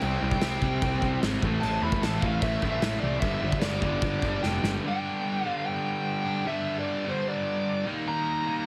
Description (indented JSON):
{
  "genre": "punk rock",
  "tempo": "149 BPM",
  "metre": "4/4",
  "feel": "straight",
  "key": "unclear",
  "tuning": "A4 = 440 Hz",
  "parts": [
    { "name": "bluesy overdriven lead guitar", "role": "melody", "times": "0.0-8.7 s", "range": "C5 to B5", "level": "-34 LUFS", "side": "equal", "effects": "distortion" },
    { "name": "distorted electric guitar", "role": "riff", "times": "0.0-8.7 s", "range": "G2 to Eb4", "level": "-35 LUFS", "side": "equal", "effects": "distortion" },
    { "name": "distorted electric guitar", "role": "riff", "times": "0.0-8.7 s", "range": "G2 to E4", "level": "-36 LUFS", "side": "equal", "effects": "distortion" },
    { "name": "fuzz guitar", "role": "riff", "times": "0.0-4.8 s", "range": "G2 to C4", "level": "-36 LUFS", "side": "equal", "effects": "distortion" },
    { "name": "fuzz picked electric bass", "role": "bass", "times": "0.0-4.8 s", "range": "F1 to E2", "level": "-33 LUFS", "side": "equal", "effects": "overdrive" },
    { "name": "loose indie drum kit", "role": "drums", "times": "0.0-4.7 s", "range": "crash cymbal, kick drum, snare drum", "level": "-33 LUFS", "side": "equal", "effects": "none" }
  ],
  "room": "light reverb",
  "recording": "heavily compressed radio sound",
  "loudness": "-28 LUFS",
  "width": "mono",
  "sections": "0.0-4.8 A section; 4.8-8.7 B section",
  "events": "drum fill 4.4-4.8; half time 4.8-8.7",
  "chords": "0.0 C; 1.4 Am; 3.2 G; 7.9 Eb"
}